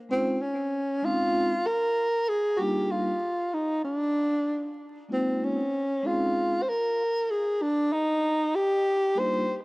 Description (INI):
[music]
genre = hip hop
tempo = 96 BPM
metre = 4/4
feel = swing 63% on 16ths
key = Bb dorian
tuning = A4 = 440 Hz
[part]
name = breathy tenor saxophone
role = melody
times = 0.1-9.5 s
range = C4 to C5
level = -25 LUFS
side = equal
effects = cassette tape, tape echo
[part]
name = vibraphone with soft mallets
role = accompaniment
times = 0.1-9.4 s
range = G3 to Ab4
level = -30 LUFS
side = equal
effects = cassette tape
[sound]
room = moderate spring reverb, RT60 1.1 s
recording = home recording on cassette, vinyl crackle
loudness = -24 LUFS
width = side -25 dB against mid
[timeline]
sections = 0.0-9.6 A section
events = none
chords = 0.1 Bbm11; 2.6 Gm7; 5.1 Bbm11; 7.6 Gm